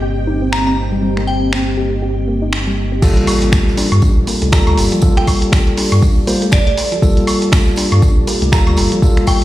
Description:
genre	deep house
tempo	120 BPM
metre	4/4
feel	swing 58% on 16ths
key	G minor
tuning	A4 = 440 Hz
part	deep dark ambient pad	sustained chords	0.0-9.4 s	Bb3 to F5	-29 LUFS	right 2 dB	chorus, built-in reverb, sidechain pumping
part	soft round pluck	arpeggios	0.0-9.2 s	F3 to G4	-24 LUFS	left 1 dB	chorus, sidechain pumping, analog delay
part	sub bass with octave	bass	0.0-8.9 s	F1 to G2	-17 LUFS	equal	none
part	granular cloud pad	texture	0.0-9.4 s	C4 to Eb5	-25 LUFS	equal	built-in reverb, sidechain pumping
part	string machine, violins	texture	0.0-3.0 s	G5	-37 LUFS	equal	ensemble chorus, sidechain pumping
part	glassy synth bell	melody	0.5-9.4 s	D5 to Bb5	-23 LUFS	right 1 dB	chorus, phaser, analog delay
part	dusty soul sampler-style drum kit	drums	0.5-9.4 s	crash cymbal, finger snaps, hi-hat, shaker, woodblock	-21 LUFS	equal	none
part	mellow tine electric piano	stabs	3.0-9.4 s	G3 to C5	-17 LUFS	left 1 dB	sidechain pumping, analog delay
part	electronic kick drum	drums	3.0-9.4 s	none	-13 LUFS	equal	overdrive
part	open jazz drum kit	drums	3.0-9.4 s	hi-hat, snare drum, tambourine	-30 LUFS	right 3 dB	sidechain pumping on hats, high-pass filter on hats, high-pass filter on snare, sidechain pumping on perc, high-pass filter on perc, high-pass filter on room
part	impact	sound effects	3.0-5.0 s	none	-22 LUFS	equal	none
room	light reverb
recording	played on a big sound system in a bare room, stone room reverb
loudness	-11 LUFS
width	side -15 dB against mid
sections	0.0-3.0 A section; 3.0-9.4 B section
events	drop 3.0-9.4; impact 3.0-5.0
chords	0.0 Cm7/G; 3.0 Gm9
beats	0.02 0.52 | 1.02 1.52 2.02 2.52 | 3.02 3.52 4.02 4.52 | 5.02 5.52 6.02 6.52 | 7.02 7.52 8.02 8.52 | 9.02

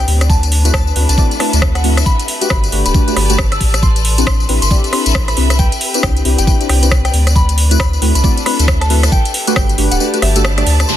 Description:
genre	UK garage, two-step garage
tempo	136 BPM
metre	4/4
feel	swing 60% on 16ths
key	unclear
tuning	A4 = 439 Hz
part	soft synth bell	melody	0.0-11.0 s	D5 to E6	-23 LUFS	left 1 dB	chorus, digital delay
part	soft string machine	sustained chords	0.1-11.0 s	A4 to B4	-30 LUFS	equal	ensemble chorus, sidechain pumping
part	saturated sub bass	bass	0.0-10.8 s	D1 to D2	-14 LUFS	equal	none
part	rich chamber string section	texture	0.0-11.0 s	C4 to B5	-24 LUFS	left 1 dB	sidechain pumping
part	garage drum kit	drums	0.1-11.0 s	hi-hat, rim click, tambourine	-18 LUFS	left 1 dB	soft clipping on snare
part	electronic kick drum	drums	0.3-9.7 s	none	-14 LUFS	equal	none
part	deep mellow chord stab	stabs	0.6-10.6 s	A3 to D5	-19 LUFS	equal	chorus, ping-pong delay
part	downlifter	sound effects	10.9-11.0 s	none	-13 LUFS	left 1 dB	none
room	little or no reverb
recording	dense, heavily limited modern master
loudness	-11 LUFS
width	side -12 dB against mid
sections	0.0-10.9 A section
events	kick drops out 10.0-10.9; band accent 10.4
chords	0.3 D13; 2.1 Gmaj7; 3.8 Am11; 7.4 D13; 9.1 Gmaj7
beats	| 0.30 0.74 1.18 1.62 | 2.06 2.50 2.94 3.38 | 3.83 4.27 4.71 5.15 | 5.59 6.03 6.47 6.91 | 7.36 7.80 8.24 8.68 | 9.12 9.56 10.00 10.44 | 10.88

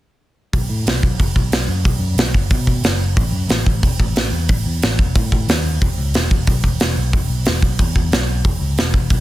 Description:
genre	punk rock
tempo	182 BPM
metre	4/4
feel	straight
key	unclear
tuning	A4 = 440 Hz
part	picked electric bass	bass	0.5-9.2 s	E1 to B2	-20 LUFS	equal	none
part	big rock drum kit	drums	0.5-9.2 s	hi-hat, kick drum, snare drum	-16 LUFS	equal	none
room	little or no reverb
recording	dense, heavily limited modern master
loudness	-15 LUFS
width	side -16 dB against mid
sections	0.5-9.2 A section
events	none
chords	none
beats	| 0.52 0.85 1.18 1.51 | 1.84 2.17 2.50 2.83 | 3.17 3.50 3.83 4.16 | 4.49 4.82 5.15 5.48 | 5.81 6.14 6.47 6.80 | 7.13 7.46 7.79 8.12 | 8.44 8.77 9.10

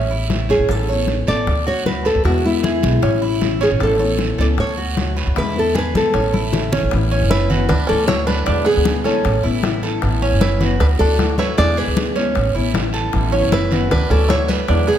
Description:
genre	latin, Cuban son and guajira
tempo	154 BPM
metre	4/4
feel	straight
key	A major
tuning	A4 = 440 Hz
part	nylon-string guitar	melody	0.0-15.0 s	E4 to E5	-20 LUFS	equal	none
part	Cuban tres	arpeggios	0.0-15.0 s	C#4 to D5	-24 LUFS	right 6 dB	none
part	upright bass	bass	0.0-15.0 s	F#1 to E3	-20 LUFS	equal	none
part	bongos	percussion	0.1-15.0 s	none	-29 LUFS	left 6 dB	none
part	congas	percussion	0.1-15.0 s	none	-25 LUFS	left 2 dB	none
part	fingerpicked steel-string acoustic guitar	accompaniment	0.3-15.0 s	B2 to F#4	-25 LUFS	left 7 dB	none
part	guiro	percussion	0.3-15.0 s	none	-30 LUFS	right 6 dB	none
part	bluegrass banjo	second line	7.3-15.0 s	B3 to G#4	-28 LUFS	right 4 dB	none
room	moderate concert hall reverb, RT60 1.9 s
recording	none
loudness	-15 LUFS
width	side -10 dB against mid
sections	0.0-6.9 A section; 6.9-15.0 B section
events	drum fill 6.3-6.9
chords	0.0 Aadd9; 1.5 Dadd9; 2.3 E7; 3.0 Aadd9; 4.6 Dadd9; 5.4 E7; 6.1 Aadd9; 7.7 Dadd9; 8.5 E7; 9.2 Aadd9; 10.8 Dadd9; 11.6 E7; 12.4 Aadd9; 13.9 Dadd9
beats	0.30 | 0.69 1.08 1.47 1.86 | 2.25 2.64 3.03 3.42 | 3.81 4.20 4.59 4.97 | 5.36 5.75 6.14 6.53 | 6.92 7.31 7.70 8.09 | 8.47 8.86 9.25 9.64 | 10.03 10.42 10.80 11.19 | 11.58 11.97 12.36 12.75 | 13.13 13.52 13.91 14.30 | 14.69

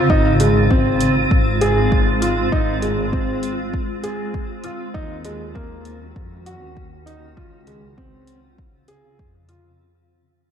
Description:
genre	piano and strings electronica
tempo	99 BPM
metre	4/4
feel	straight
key	Ab mixolydian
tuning	A4 = 439 Hz
part	granular cloud pad	sustained chords	0.0-9.8 s	Db3 to Gb4	-22 LUFS	equal	built-in reverb, sidechain pumping
part	clear upright piano	riff	0.1-9.7 s	Ab3 to Ab4	-22 LUFS	right 1 dB	ping-pong delay
part	rich chamber double bass section	bass	0.1-9.7 s	Ab1 to F2	-23 LUFS	equal	sidechain pumping
part	electronic kick drum	drums	0.1-9.3 s	none	-20 LUFS	equal	overdrive
part	electronic hi-hat	drums	0.4-9.6 s	none	-33 LUFS	left 1 dB	overdrive
room	moderate scoring stage reverb, RT60 1.9 s, digital ambience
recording	dark, warm production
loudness	-16 LUFS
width	side -8 dB against mid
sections	0.0-9.8 A section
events	fade-out 0.0-9.8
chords	0.1 Ab6; 4.9 Ebm7; 7.4 Dbmaj7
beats	| 0.09 0.70 1.30 1.91 | 2.52 3.12 3.73 4.34 | 4.94 5.55 6.15 6.76 | 7.37 7.97 8.58 9.18

